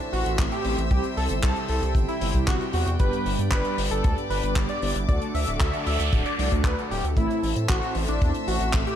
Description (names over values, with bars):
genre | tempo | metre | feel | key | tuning
italo disco | 115 BPM | 4/4 | straight | A dorian | A4 = 440 Hz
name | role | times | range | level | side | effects
rich chamber string section | sustained chords | 0.0-9.0 s | A4 to E6 | -34 LUFS | left 2 dB | none
mellow synth brass | stabs | 0.0-9.0 s | G2 to A4 | -30 LUFS | right 2 dB | chorus
wide unison lead | melody | 0.1-9.0 s | D4 to E5 | -29 LUFS | equal | ping-pong delay
round analog bass | bass | 0.1-8.8 s | D1 to A2 | -27 LUFS | equal | none
damped 70s drum kit | drums | 0.1-9.0 s | handclaps, hi-hat | -32 LUFS | left 2 dB | studio reverb, gated reverb
kick drum | drums | 0.4-8.8 s | none | -24 LUFS | equal | studio reverb
noise sweep | sound effects | 5.4-7.2 s | none | -34 LUFS | right 1 dB | none
room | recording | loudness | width
studio reverb | none | -22 LUFS | side -10 dB against mid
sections
0.0-9.0 A section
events
noise sweep 5.4-7.2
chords
0.0 Am; 0.9 C; 3.0 G; 5.1 D; 7.2 Am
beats
0.39 | 0.91 1.43 1.95 2.48 | 3.00 3.52 4.04 4.56 | 5.08 5.61 6.13 6.65 | 7.17 7.69 8.21 8.74